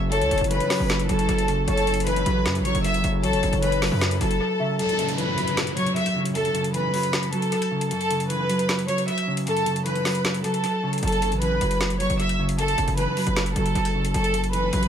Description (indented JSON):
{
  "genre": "hip hop, trap",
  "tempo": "154 BPM",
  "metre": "4/4",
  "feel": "half-time",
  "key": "F# minor",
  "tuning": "A4 = 440 Hz",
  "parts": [
    { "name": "mellow electric guitar", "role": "accompaniment", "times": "0.0-14.9 s", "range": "F#2 to F#3", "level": "-26 LUFS", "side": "equal", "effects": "spring reverb, analog delay" },
    { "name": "deep dark ambient pad", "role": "sustained chords", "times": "0.0-4.8 s", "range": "F#3 to A4", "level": "-35 LUFS", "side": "equal", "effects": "chorus, built-in reverb" },
    { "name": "distorted 808-style bass", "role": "bass", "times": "0.0-4.4, 11.0-14.9 s", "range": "F#1 to F#2", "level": "-26 LUFS", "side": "equal", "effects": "distortion" },
    { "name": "warm studio violin section", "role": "melody", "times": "0.1-14.9 s", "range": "A4 to E6", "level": "-25 LUFS", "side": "equal", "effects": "analog delay" },
    { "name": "warm velvety synth lead", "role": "second line", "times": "0.1-4.8 s", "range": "B4 to E5", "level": "-30 LUFS", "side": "left 4 dB", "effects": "chorus, analog delay" },
    { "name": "trap drum kit", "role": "drums", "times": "0.1-14.9 s", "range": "hi-hat, snare drum", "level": "-30 LUFS", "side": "left 1 dB", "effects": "analog delay" },
    { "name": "downlifter", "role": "sound effects", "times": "4.8-7.9 s", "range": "none", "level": "-33 LUFS", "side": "equal", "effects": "none" }
  ],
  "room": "light reverb",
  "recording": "echo-heavy mix",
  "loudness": "-21 LUFS",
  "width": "side -8 dB against mid",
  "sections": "0.0-4.8 A section; 4.8-14.9 B section",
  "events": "break 4.4-4.8; kick muted 4.8-11.0",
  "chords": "0.0 F#m7"
}